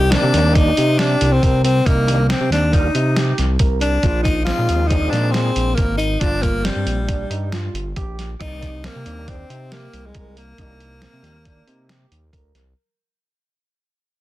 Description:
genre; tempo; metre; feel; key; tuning
progressive instrumental, band music in an uneven meter; 138 BPM; 5/4; straight; unclear; A4 = 439 Hz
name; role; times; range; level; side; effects
breathy tenor saxophone; melody; 0.0-12.3 s; G3 to G4; -21 LUFS; left 2 dB; none
smooth synth bass; bass; 0.0-12.7 s; G1 to C3; -20 LUFS; equal; none
overdriven tonewheel organ; accompaniment; 0.1-11.4 s; Eb3 to D5; -27 LUFS; left 2 dB; chorus vibrato, fast rotary speaker
dark grand piano; arpeggios; 0.1-12.6 s; C4 to Bb4; -29 LUFS; right 6 dB; none
lo-fi sampler-style drum kit; drums; 0.1-12.6 s; hi-hat, kick drum, snare drum; -21 LUFS; equal; none
room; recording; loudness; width
light reverb; dense, heavily limited modern master; -15 LUFS; side -16 dB against mid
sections
0.0-12.8 A section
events
fade-out 0.0-12.8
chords
0.0 Cm7; 4.0 Bb7sus4; 6.2 Gm7; 8.4 Cm7

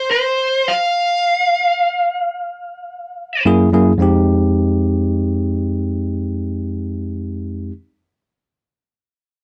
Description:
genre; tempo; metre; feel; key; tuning
blues; 107 BPM; 4/4; straight; F minor; A4 = 441 Hz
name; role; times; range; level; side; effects
lead guitar through a small cranked amp; melody; 0.0-3.4 s; C5 to F5; -18 LUFS; equal; overdrive
bell-like tine electric piano; accompaniment; 3.5-7.7 s; F2 to Ab4; -17 LUFS; equal; none
room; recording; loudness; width
light reverb; dry, close 1970s-style studio recording; -17 LUFS; mono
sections
0.0-4.0 A section; 4.0-6.3 B section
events
stop 0.0-3.5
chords
0.0 N.C.; 3.5 Gb7; 4.0 Fm9

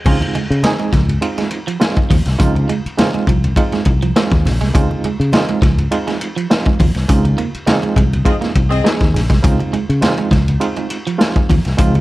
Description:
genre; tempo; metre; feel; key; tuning
funk; 102 BPM; 4/4; straight; unclear; A4 = 440 Hz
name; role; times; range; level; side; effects
congas; percussion; 0.0-12.0 s; none; -24 LUFS; right 1 dB; none
electric guitar at the edge of break-up; riff; 0.1-12.0 s; F3 to Db4; -23 LUFS; right 6 dB; none
barky reed electric piano; stabs; 0.1-12.0 s; Ab3 to Ab4; -20 LUFS; right 3 dB; overdrive, fast tremolo, plate reverb
fingered electric bass; bass; 0.1-12.0 s; Bb1 to Db3; -16 LUFS; left 1 dB; none
raw garage drum kit; drums; 0.1-12.0 s; crash cymbal, hi-hat, kick drum, ride cymbal, snare drum; -16 LUFS; left 1 dB; none
warm horn section; second line; 8.2-8.9 s; C4 to Eb5; -22 LUFS; left 5 dB; plate reverb
room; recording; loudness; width
little or no reverb; dark, warm production; -13 LUFS; side -17 dB against mid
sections
0.1-12.0 A section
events
band accent 7.1-9.4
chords
0.1 Dbmaj9

